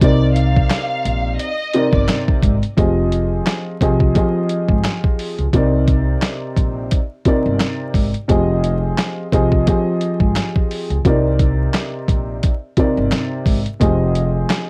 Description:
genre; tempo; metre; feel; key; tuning
hip hop, boom-bap hip-hop; 87 BPM; 4/4; swing 57% on 16ths; F dorian; A4 = 440 Hz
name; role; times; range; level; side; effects
warm studio violin section; melody; 0.0-2.1 s; D5 to F5; -26 LUFS; equal; high-pass filter, low-pass filter, cassette tape, plate reverb, tape echo
dark upright piano; accompaniment; 0.0-14.7 s; C3 to Eb5; -21 LUFS; equal; cassette tape, high-pass filter, low-pass filter
upright bass; bass; 0.0-14.4 s; F1 to Db2; -22 LUFS; equal; none
boom bap sampler-style drum kit; drums; 0.0-14.7 s; handclaps, hi-hat, kick drum, snare drum; -20 LUFS; equal; none
room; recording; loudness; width
little or no reverb; home recording on cassette, vinyl crackle; -17 LUFS; mono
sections
0.0-2.8 A section; 2.8-14.7 B section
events
none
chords
0.0 Cm9; 2.8 Fm9; 5.5 Cm9; 8.3 Fm9; 11.0 Cm9; 13.8 Fm9

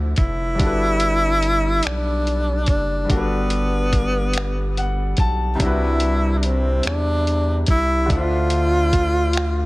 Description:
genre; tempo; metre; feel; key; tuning
slow six-eight R&B; 48 BPM (dotted quarters); 6/8; straight; G major; A4 = 440 Hz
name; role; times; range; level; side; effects
clear baby grand piano; accompaniment; 0.0-9.7 s; C3 to A5; -26 LUFS; left 2 dB; none
saturated sub bass; bass; 0.0-9.7 s; F1 to E2; -22 LUFS; equal; none
breathy tenor saxophone; melody; 0.2-9.7 s; B3 to F4; -22 LUFS; equal; none
dusty soul sampler-style drum kit; drums; 0.2-9.6 s; finger snaps, hi-hat, kick drum; -21 LUFS; equal; none
room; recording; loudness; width
small room ambience; none; -17 LUFS; side -20 dB against mid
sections
0.0-9.7 A section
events
grand piano fill 4.3-5.6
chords
0.0 Dm9; 0.6 Gmaj9; 5.6 Cmaj9#11; 8.1 Dm9

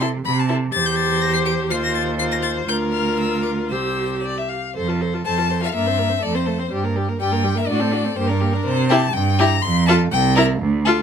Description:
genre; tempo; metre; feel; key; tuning
quick classical-period movement for string quartet; 123 BPM; 2/4; rubato; F major; A4 = 439 Hz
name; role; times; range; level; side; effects
clear violin; melody; 0.0-10.4 s; Bb4 to D7; -23 LUFS; left 8 dB; none
clear violin; second line; 0.0-11.0 s; F#4 to F5; -25 LUFS; left 4 dB; none
rich viola; accompaniment; 0.0-11.0 s; G3 to A4; -23 LUFS; equal; none
rich cello; bass; 0.0-11.0 s; C2 to C3; -21 LUFS; right 4 dB; none
room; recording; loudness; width
little or no reverb; close, detailed microphones; -17 LUFS; side -7 dB against mid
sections
0.0-4.8 A section; 4.8-11.0 B section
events
none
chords
0.0 Am/C; 0.7 C/E; 1.7 F5/Eb; 2.7 Bb/D; 3.7 C; 4.8 F; 5.7 C7/G; 6.2 F; 6.7 Gm; 7.7 D7/A; 8.2 Gm; 8.7 C; 9.6 F; 10.1 C7

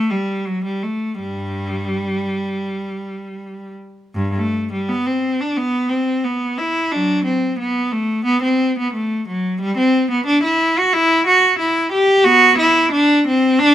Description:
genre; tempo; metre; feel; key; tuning
classical, baroque-style suite movement for unaccompanied cello; 76-93 BPM; 4/4; rubato; G major; A4 = 440 Hz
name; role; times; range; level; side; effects
rich cello; solo; 0.0-13.7 s; G2 to G4; -15 LUFS; equal; none
room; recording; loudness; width
moderate stone room reverb, RT60 1.0 s; none; -15 LUFS; side -11 dB against mid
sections
0.0-4.2 A section; 4.2-13.7 B section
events
none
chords
none

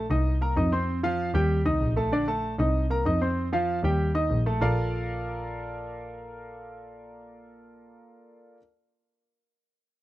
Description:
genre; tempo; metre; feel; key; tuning
latin, salsa; 193 BPM; 4/4; straight; Bb major; A4 = 440 Hz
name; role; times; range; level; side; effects
warm grand piano; accompaniment; 0.0-8.6 s; D3 to Eb6; -28 LUFS; right 1 dB; none
clear double bass; bass; 0.0-7.9 s; Bb1 to F2; -27 LUFS; equal; none
room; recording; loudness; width
small room ambience; dry, close 1970s-style studio recording; -24 LUFS; side -16 dB against mid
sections
0.0-4.6 A section; 4.6-7.1 B section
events
none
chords
0.3 Cm7; 0.9 F5; 1.5 Eb; 2.1 Bbmaj7; 2.7 Cm7; 3.4 F5; 4.0 Eb; 4.6 Bbmaj7

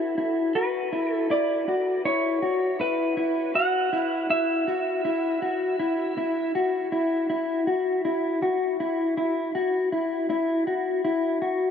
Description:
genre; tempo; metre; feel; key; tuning
dream pop; 80 BPM; 4/4; straight; unclear; A4 = 441 Hz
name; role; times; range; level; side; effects
mellow electric guitar; arpeggios; 0.0-11.7 s; E4 to F#4; -24 LUFS; left 2 dB; analog chorus, tape echo
clean lap steel guitar; melody; 0.6-6.5 s; B4 to F#5; -27 LUFS; right 2 dB; tape echo
room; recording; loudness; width
wet huge ambient reverb, RT60 7.8 s; none; -23 LUFS; side -7 dB against mid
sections
0.0-11.7 A section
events
none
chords
0.0 Esus2

